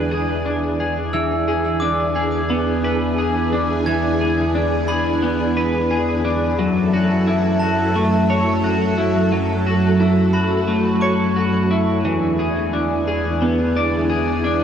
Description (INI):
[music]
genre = dream pop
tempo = 88 BPM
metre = 4/4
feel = straight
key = unclear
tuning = A4 = 440 Hz
[part]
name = string machine, full ensemble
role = sustained chords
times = 0.0-14.6 s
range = E2 to A4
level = -20 LUFS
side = right 1 dB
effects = ensemble chorus
[part]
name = electric guitar at the edge of break-up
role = arpeggios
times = 0.0-14.6 s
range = E3 to D5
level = -19 LUFS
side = left 1 dB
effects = analog chorus, digital delay
[part]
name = glockenspiel with brass mallets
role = texture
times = 0.0-12.3 s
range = A5 to G#6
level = -29 LUFS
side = right 1 dB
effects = digital delay
[sound]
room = moderate huge ambient reverb, RT60 9.3 s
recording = dark, warm production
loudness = -16 LUFS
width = side -8 dB against mid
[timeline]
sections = 0.0-1.1 A section; 1.1-14.6 B section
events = none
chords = 0.0 E7; 6.6 F#m7; 12.0 E7